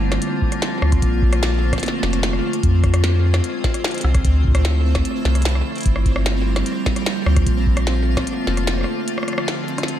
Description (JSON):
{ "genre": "IDM", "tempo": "149 BPM", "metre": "4/4", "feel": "straight", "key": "unclear", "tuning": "A4 = 440 Hz", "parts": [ { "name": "icy glass pad", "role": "sustained chords", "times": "0.0-10.0 s", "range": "D3 to F4", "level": "-24 LUFS", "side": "equal", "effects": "chorus, built-in reverb" }, { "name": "round analog bass", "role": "bass", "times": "0.0-8.8 s", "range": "F1 to F2", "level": "-18 LUFS", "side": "equal", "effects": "none" }, { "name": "pulsing gated texture", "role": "texture", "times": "0.0-10.0 s", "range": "C4 to C5", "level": "-29 LUFS", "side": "right 1 dB", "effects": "chorus, built-in reverb" }, { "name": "glitchy drum kit", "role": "drums", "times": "0.1-10.0 s", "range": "hi-hat, rim click, snare drum", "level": "-25 LUFS", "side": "left 1 dB", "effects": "dub echo" }, { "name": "electronic kick drum", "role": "drums", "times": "0.4-8.3 s", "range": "none", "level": "-20 LUFS", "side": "equal", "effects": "none" } ], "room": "light reverb", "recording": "echo-heavy mix", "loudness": "-16 LUFS", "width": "side -11 dB against mid", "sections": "0.0-10.0 A section", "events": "break 9.1-10.0", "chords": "0.0 Gm7; 1.0 Bbmaj7; 2.6 Fm6; 4.2 Dm9; 5.9 Gm7; 7.5 Bbmaj7; 9.1 Fm6" }